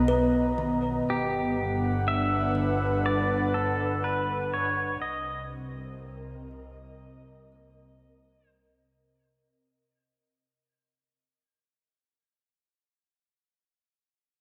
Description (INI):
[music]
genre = ambient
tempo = 60 BPM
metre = 4/4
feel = straight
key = unclear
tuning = A4 = 441 Hz
[part]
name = airy breathy pad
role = sustained chords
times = 0.0-9.0 s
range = B2 to A#5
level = -31 LUFS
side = equal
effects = chorus
[part]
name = kalimba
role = arpeggios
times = 0.0-12.3 s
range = D3 to Db5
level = -36 LUFS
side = equal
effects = diffuse ambient delay
[part]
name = dark studio double bass section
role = bass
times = 0.0-9.0 s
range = G1 to C2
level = -35 LUFS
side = equal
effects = none
[part]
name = pedal steel guitar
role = melody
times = 1.1-8.5 s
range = G4 to Fb5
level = -32 LUFS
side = equal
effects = diffuse ambient delay
[sound]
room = wet lush hall reverb, RT60 2.8 s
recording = none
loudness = -27 LUFS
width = mono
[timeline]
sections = 0.0-9.0 A section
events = fade-out on kalimba 0.0-9.0; fade-out 0.0-9.0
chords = 0.0 Bmaj7; 1.1 Gmaj7; 5.0 Cm7